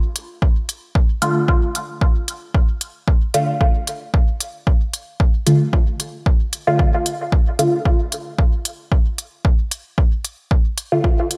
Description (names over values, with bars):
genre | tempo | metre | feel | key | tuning
dub techno | 113 BPM | 4/4 | swing 54% on 16ths | D minor | A4 = 440 Hz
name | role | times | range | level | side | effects
electronic hi-hat | drums | 0.2-11.4 s | none | -27 LUFS | equal | none
electronic kick drum | drums | 0.4-11.2 s | none | -18 LUFS | equal | none
filtered dub chord stab | stabs | 1.2-11.1 s | D3 to F4 | -22 LUFS | equal | phaser, sidechain pumping, dub echo
room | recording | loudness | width
light reverb | none | -19 LUFS | mono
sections
0.0-11.4 A section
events
none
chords
0.0 Dm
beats
0.42 | 0.95 1.48 2.02 2.55 | 3.08 3.61 4.14 4.67 | 5.20 5.73 6.26 6.79 | 7.33 7.86 8.39 8.92 | 9.45 9.98 10.51 11.04